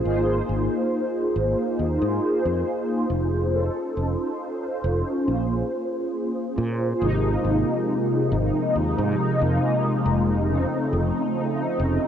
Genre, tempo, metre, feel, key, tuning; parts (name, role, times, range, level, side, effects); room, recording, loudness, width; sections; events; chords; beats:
vaporwave; 69 BPM; 4/4; straight; Ab major; A4 = 439 Hz
mellow synth brass; accompaniment; 0.0-12.1 s; C3 to C5; -22 LUFS; equal; phaser, ensemble chorus, analog delay
fretless electric bass; bass; 0.1-12.0 s; F1 to Bb2; -25 LUFS; equal
moderate lush hall reverb, RT60 2.6 s; cassette tape; -21 LUFS; side -9 dB against mid
0.0-7.0 A section; 7.0-12.1 B section
0.1 Ab6; 3.5 F7b13; 5.3 Bbm7; 7.0 Ab6; 10.5 F7b13
| 0.06 0.93 1.80 2.67 | 3.54 4.41 5.28 6.15 | 7.01 7.88 8.75 9.62 | 10.49 11.36